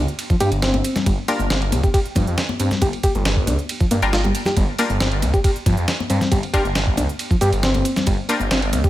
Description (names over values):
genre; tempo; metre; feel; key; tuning
breakbeat, breaks; 137 BPM; 4/4; straight; G minor; A4 = 441 Hz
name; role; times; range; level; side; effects
phased detuned saw bass; bass; 0.0-8.8 s; G1 to G2; -21 LUFS; equal; phaser, tube saturation
electronic hi-hat; drums; 0.1-8.9 s; none; -35 LUFS; right 3 dB; small room ambience
dusty soul sampler-style drum kit; drums; 0.2-8.9 s; hi-hat, kick drum, ride cymbal, snare drum; -21 LUFS; equal; small room ambience
reed electric piano; riff; 0.3-8.9 s; F3 to G4; -23 LUFS; equal; fast tremolo, low-pass filter, dub echo
congas; percussion; 0.4-8.8 s; none; -28 LUFS; left 4 dB; none
band-passed chord stab; stabs; 1.3-8.4 s; G3 to Bb4; -26 LUFS; left 2 dB; chorus, dub echo
room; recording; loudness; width
digital ambience; none; -17 LUFS; side -14 dB against mid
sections
0.0-8.9 A section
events
none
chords
0.0 G7(no3)